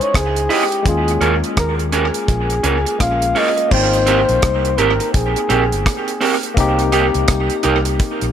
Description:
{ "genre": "lovers rock reggae", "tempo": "84 BPM", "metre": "4/4", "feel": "swing 61% on 16ths", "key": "Ab major", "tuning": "A4 = 440 Hz", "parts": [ { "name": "breathy flugelhorn", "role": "melody", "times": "0.0-6.2 s", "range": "G4 to F5", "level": "-20 LUFS", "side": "left 1 dB", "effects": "tape echo" }, { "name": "barky tine electric piano", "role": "accompaniment", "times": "0.0-8.3 s", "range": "Ab3 to G5", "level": "-22 LUFS", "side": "left 4 dB", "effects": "overdrive, auto-pan, tape echo" }, { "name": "deep reggae drum kit", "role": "drums", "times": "0.0-8.3 s", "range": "crash cymbal, hi-hat, kick drum, rim click", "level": "-20 LUFS", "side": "equal", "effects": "tape echo" }, { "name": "vintage muted fingered electric bass", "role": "bass", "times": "0.1-8.3 s", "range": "G1 to Eb2", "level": "-20 LUFS", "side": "equal", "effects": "none" }, { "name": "electric guitar through a small old amp", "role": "stabs", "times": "0.5-7.9 s", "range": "C4 to Eb5", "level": "-20 LUFS", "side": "right 5 dB", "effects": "tape echo" } ], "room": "light reverb", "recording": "none", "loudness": "-14 LUFS", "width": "side -9 dB against mid", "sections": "0.0-3.7 A section; 3.7-8.3 B section", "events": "none", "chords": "0.0 Dbmadd9; 0.9 Eb7sus4; 3.7 Abmaj9; 6.6 Cm7" }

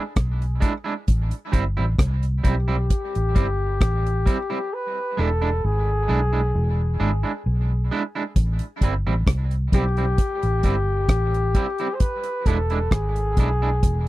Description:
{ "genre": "dub reggae", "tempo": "66 BPM", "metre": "4/4", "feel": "straight", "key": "A minor", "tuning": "A4 = 440 Hz", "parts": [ { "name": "electric guitar at the edge of break-up", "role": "accompaniment", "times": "0.0-13.7 s", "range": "G3 to E4", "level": "-29 LUFS", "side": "right 5 dB", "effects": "high-pass filter, tape echo" }, { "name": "vintage muted fingered electric bass", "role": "bass", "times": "0.2-14.1 s", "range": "E1 to C2", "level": "-22 LUFS", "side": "equal", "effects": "none" }, { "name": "deep reggae drum kit", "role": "drums", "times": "0.2-14.0 s", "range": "hi-hat, kick drum, rim click", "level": "-20 LUFS", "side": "equal", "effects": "none" }, { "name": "mellow flugelhorn", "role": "melody", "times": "2.5-14.1 s", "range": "G4 to C5", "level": "-27 LUFS", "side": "left 2 dB", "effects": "tape echo" } ], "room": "little or no reverb", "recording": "dry, close 1970s-style studio recording", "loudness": "-20 LUFS", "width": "side -17 dB against mid", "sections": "0.0-14.1 A section", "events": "part muted 4.7-8.4", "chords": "0.0 E7; 1.1 Am7; 4.7 E7; 8.4 Am7; 12.0 E7" }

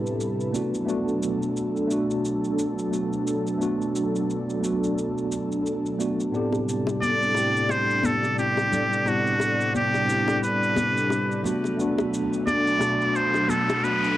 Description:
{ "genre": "sunset chillout", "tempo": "88 BPM", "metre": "4/4", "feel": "swing 57% on 16ths", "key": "unclear", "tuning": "A4 = 440 Hz", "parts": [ { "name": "mellow tine electric piano", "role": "accompaniment", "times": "0.0-14.2 s", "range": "A2 to G4", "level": "-26 LUFS", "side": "equal", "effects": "medium stereo tremolo, auto-pan, low-pass filter, cassette tape" }, { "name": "airy breathy pad", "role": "sustained chords", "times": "0.0-14.2 s", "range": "B2 to D5", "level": "-28 LUFS", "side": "equal", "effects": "chorus, cassette tape" }, { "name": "cabasa", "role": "drums", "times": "0.1-14.2 s", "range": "none", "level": "-40 LUFS", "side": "equal", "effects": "small room ambience, cassette tape" }, { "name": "bongos and congas", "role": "percussion", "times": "6.5-13.8 s", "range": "none", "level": "-29 LUFS", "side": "left 3 dB", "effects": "none" }, { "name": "trumpet with straight mute", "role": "melody", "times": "7.0-14.2 s", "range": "F#4 to D5", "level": "-23 LUFS", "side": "equal", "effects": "cassette tape, tape echo" }, { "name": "riser", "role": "sound effects", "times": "12.3-14.2 s", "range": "none", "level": "-34 LUFS", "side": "left 1 dB", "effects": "none" } ], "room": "wet studio reverb, RT60 0.5 s", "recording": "home recording on cassette", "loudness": "-22 LUFS", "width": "side -14 dB against mid", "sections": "0.0-14.2 A section", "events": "riser 12.3-14.2", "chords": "0.0 Am11; 0.5 Bm7; 6.3 Am11; 11.4 Bm7" }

